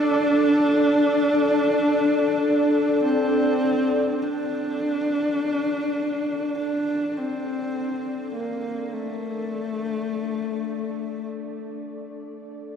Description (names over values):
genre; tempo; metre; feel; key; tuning
ambient; free time; none; none; unclear; A4 = 440 Hz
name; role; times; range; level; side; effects
dark horsehead fiddle; melody; 0.0-11.3 s; A3 to D4; -23 LUFS; left 1 dB; diffuse ambient delay
sweeping resonant pad; sustained chords; 0.0-12.8 s; D4 to D5; -26 LUFS; equal; chorus
room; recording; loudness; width
wet cathedral reverb, RT60 6.0 s; in a vast, echoing space, cassette tape; -21 LUFS; side -7 dB against mid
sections
0.0-4.2 A section; 4.2-12.8 B section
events
none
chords
0.0 D5